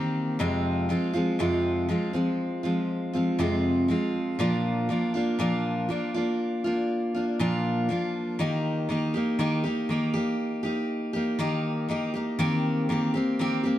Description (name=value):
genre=pop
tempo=60 BPM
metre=4/4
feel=straight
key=Eb major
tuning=A4 = 440 Hz
part: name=picked steel-string acoustic guitar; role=solo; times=0.0-13.8 s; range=F2 to G4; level=-24 LUFS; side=equal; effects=none
room=light reverb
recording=dark, warm production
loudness=-24 LUFS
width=side -13 dB against mid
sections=0.0-8.4 A section; 8.4-13.8 B section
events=none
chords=0.4 Fm; 4.4 Bb; 8.4 Eb; 12.4 Cm7/Eb